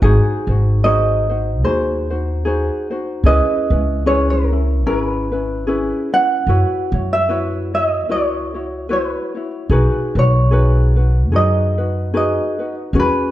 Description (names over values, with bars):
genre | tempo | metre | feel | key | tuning
Hawaiian | 74 BPM | 4/4 | swing 56% on 8ths | B major | A4 = 440 Hz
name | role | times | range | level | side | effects
tenor ukulele | melody | 0.0-13.3 s | G#4 to F#5 | -19 LUFS | right 2 dB | none
ukulele | accompaniment | 0.0-13.3 s | C#4 to C#5 | -21 LUFS | left 2 dB | none
upright bass | bass | 0.0-13.1 s | G#1 to F#2 | -17 LUFS | equal | none
room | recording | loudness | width
light reverb | dark, warm production | -15 LUFS | side -14 dB against mid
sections
0.0-13.3 A section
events
none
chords
0.0 G#7; 3.2 C#m7; 6.5 F#7sus4; 9.7 B6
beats
| 0.02 0.83 1.64 2.44 | 3.25 4.06 4.86 5.67 | 6.48 7.29 8.09 8.90 | 9.71 10.52 11.32 12.13 | 12.94